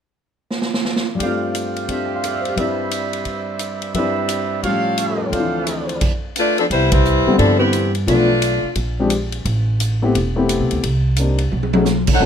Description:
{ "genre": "jazz, big band swing", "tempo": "174 BPM", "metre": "4/4", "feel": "swing 63% on 8ths", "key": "C major", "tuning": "A4 = 439 Hz", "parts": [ { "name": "swinging big-band drum kit", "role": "drums", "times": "0.5-12.3 s", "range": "crash cymbal, hi-hat, kick drum, ride cymbal, snare drum, toms", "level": "-23 LUFS", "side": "equal", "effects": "none" }, { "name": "warm grand piano", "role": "accompaniment", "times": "1.1-12.3 s", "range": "D2 to G5", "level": "-21 LUFS", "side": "left 3 dB", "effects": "none" }, { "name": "clear trumpet section", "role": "stabs", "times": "1.2-6.0 s", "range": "G3 to E6", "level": "-24 LUFS", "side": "right 5 dB", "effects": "none" }, { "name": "dark saxophone section", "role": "melody", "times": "6.4-8.7, 12.1-12.2 s", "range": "E3 to F#5", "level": "-16 LUFS", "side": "left 1 dB", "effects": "none" }, { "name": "upright bass", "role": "bass", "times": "6.7-12.3 s", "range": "E1 to G2", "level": "-19 LUFS", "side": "right 1 dB", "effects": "none" } ], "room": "light reverb", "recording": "minimal, uncompressed stereo recording", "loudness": "-16 LUFS", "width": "side -8 dB against mid", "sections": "0.0-1.2 A section; 1.2-6.7 B section; 6.7-12.3 C section", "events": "drum fill 0.5-1.2, 11.5-11.9; band accent 6.9", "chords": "0.0 N.C.; 1.2 G7sus4; 2.6 Cmaj9/G; 4.6 A7b13; 5.3 Dm7; 6.0 Bm7b5/F; 6.7 Cmaj7; 8.1 Bm7b5; 8.8 Bb13; 9.5 Am9; 10.8 Cm7; 11.5 B13" }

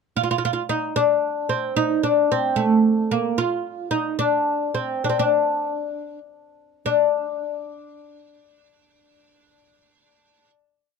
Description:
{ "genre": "Arabic maqam ensemble", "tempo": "60-75 BPM (dotted quarters)", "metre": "6/8", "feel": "straight", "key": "D maqam kurd", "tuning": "A4 = 440 Hz", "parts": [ { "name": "oud", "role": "solo", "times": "0.2-10.5 s", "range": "A3 to F4", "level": "-20 LUFS", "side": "equal", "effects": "none" } ], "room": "light reverb", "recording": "close, detailed microphones", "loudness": "-19 LUFS", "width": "side -5 dB against mid", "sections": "0.2-6.8 A section; 6.8-10.8 final note", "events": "slowing down 3.4-6.8", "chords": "none" }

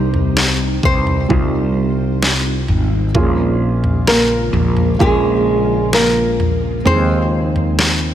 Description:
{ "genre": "pop ballad", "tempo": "65 BPM", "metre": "4/4", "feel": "straight", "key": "unclear", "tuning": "A4 = 440 Hz", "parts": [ { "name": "nylon-string guitar", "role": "melody", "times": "0.0-8.1 s", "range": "Ab3 to C5", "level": "-18 LUFS", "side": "right 1 dB", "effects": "tape echo" }, { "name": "felt-muted upright piano", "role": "accompaniment", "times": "0.0-8.1 s", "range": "Bb2 to Bb4", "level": "-22 LUFS", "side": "right 4 dB", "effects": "none" }, { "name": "ethereal airy pad", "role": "sustained chords", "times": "0.0-8.1 s", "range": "Db3 to F4", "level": "-23 LUFS", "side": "equal", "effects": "ensemble chorus, built-in reverb" }, { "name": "fretless electric bass", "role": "bass", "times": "0.0-8.1 s", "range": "Ab1 to Eb2", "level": "-18 LUFS", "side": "equal", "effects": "lush chorus" }, { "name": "smooth R&B drum kit", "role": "drums", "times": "0.1-8.0 s", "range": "kick drum, snare drum, toms", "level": "-18 LUFS", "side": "equal", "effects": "none" } ], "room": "light reverb", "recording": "none", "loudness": "-13 LUFS", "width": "side -11 dB against mid", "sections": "0.0-8.1 A section", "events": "none", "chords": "0.0 Cm; 3.2 Bbm7; 6.9 Ab/Eb" }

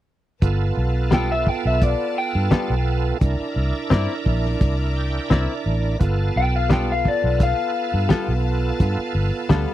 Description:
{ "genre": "straight-eighth soul blues", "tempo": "86 BPM", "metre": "4/4", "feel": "straight", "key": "G mixolydian", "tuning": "A4 = 437 Hz", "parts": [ { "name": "bright tonewheel organ", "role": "accompaniment", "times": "0.4-9.7 s", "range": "B3 to G5", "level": "-27 LUFS", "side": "right 6 dB", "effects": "slow rotary speaker, overdrive, chorus vibrato" }, { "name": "rich chamber string section", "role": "sustained chords", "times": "0.4-9.7 s", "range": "B4 to Bb5", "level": "-35 LUFS", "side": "left 4 dB", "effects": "none" }, { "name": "vintage muted fingered electric bass", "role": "bass", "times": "0.4-9.7 s", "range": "G1 to G2", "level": "-21 LUFS", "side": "equal", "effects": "none" }, { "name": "cloth-damped thuddy drum kit", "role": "drums", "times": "0.4-9.7 s", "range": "hi-hat, kick drum, snare drum", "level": "-18 LUFS", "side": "equal", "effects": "none" }, { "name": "electric guitar through a small old amp", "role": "melody", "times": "1.1-8.8 s", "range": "D5 to G5", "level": "-24 LUFS", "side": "left 4 dB", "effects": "none" }, { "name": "direct-recorded clean electric guitar", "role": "stabs", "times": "1.1-9.7 s", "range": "G3 to D5", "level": "-24 LUFS", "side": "left 7 dB", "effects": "none" } ], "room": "little or no reverb", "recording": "dry, close 1970s-style studio recording", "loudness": "-18 LUFS", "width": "side -13 dB against mid", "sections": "0.4-9.7 A section", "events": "tonewheel organ fill 4.6-6.0", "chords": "0.4 G9; 3.2 C9; 6.0 G9" }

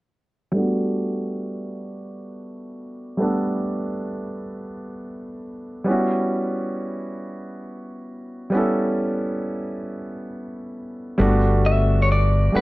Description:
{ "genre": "slow six-eight R&B", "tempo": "45 BPM (dotted quarters)", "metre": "6/8", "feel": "straight", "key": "unclear", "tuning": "A4 = 440 Hz", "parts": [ { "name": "warm grand piano", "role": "accompaniment", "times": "0.5-12.6 s", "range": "G3 to F#5", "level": "-24 LUFS", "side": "right 1 dB", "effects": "low-pass filter" }, { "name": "mellow fretless electric bass", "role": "bass", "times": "11.2-12.6 s", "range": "G1", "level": "-18 LUFS", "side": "left 1 dB", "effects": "none" }, { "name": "clean electric guitar", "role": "melody", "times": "11.7-12.6 s", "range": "B4 to E5", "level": "-22 LUFS", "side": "left 1 dB", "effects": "slapback echo" } ], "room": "moderate studio reverb, RT60 0.6 s", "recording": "dark, warm production", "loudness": "-20 LUFS", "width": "side -19 dB against mid", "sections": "0.5-11.2 A section; 11.2-12.6 B section", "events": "filter sweep on grand piano 0.5-11.2", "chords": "0.5 Gmaj9; 5.9 Em69; 11.2 Gmaj9" }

